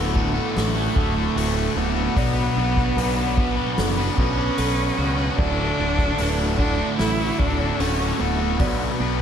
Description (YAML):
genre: post-rock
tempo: 75 BPM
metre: 4/4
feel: straight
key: D major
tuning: A4 = 437 Hz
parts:
  - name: rich cello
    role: melody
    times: 0.0-9.0 s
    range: A3 to E4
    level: -26 LUFS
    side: equal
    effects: digital delay
  - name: chorused pulse-width pad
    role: sustained chords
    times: 0.0-9.2 s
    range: A4 to D6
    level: -36 LUFS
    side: left 2 dB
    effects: none
  - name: felt-muted upright piano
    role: arpeggios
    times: 0.0-9.2 s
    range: A4 to D5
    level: -36 LUFS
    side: right 5 dB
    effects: digital delay
  - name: semi-hollow electric guitar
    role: arpeggios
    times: 0.0-9.2 s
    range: D2 to B4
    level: -31 LUFS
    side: left 2 dB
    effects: tremolo, digital delay
  - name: overdriven semi-hollow guitar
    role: riff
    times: 0.0-9.2 s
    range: D2 to B4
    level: -28 LUFS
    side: right 14 dB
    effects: phaser
  - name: tight distorted guitar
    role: riff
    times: 0.0-9.2 s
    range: D2 to B4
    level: -28 LUFS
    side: left 14 dB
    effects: distortion
  - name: growling fingered electric bass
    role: bass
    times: 0.0-9.2 s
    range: D1 to C#2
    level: -25 LUFS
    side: equal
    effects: overdrive
  - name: soft-mallet drum kit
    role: drums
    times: 0.2-8.8 s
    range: crash cymbal, hi-hat, kick drum, snare drum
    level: -26 LUFS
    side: equal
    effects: none
room: small room ambience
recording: dark, warm production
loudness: -19 LUFS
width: side -8 dB against mid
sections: 0.0-9.2 A section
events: none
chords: 0.0 D; 2.2 Bm; 5.4 D; 8.6 Bm